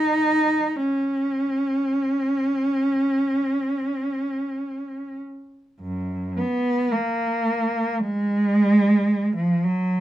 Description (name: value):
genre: classical, free, expressive piece for unaccompanied cello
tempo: free time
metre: none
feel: none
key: unclear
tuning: A4 = 436 Hz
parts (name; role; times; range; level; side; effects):
- rich cello; solo; 0.0-10.0 s; F#2 to D#4; -20 LUFS; right 1 dB; none
room: light reverb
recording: minimal, uncompressed stereo recording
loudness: -20 LUFS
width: side -13 dB against mid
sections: 0.0-5.8 A section; 5.8-10.0 B section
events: none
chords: none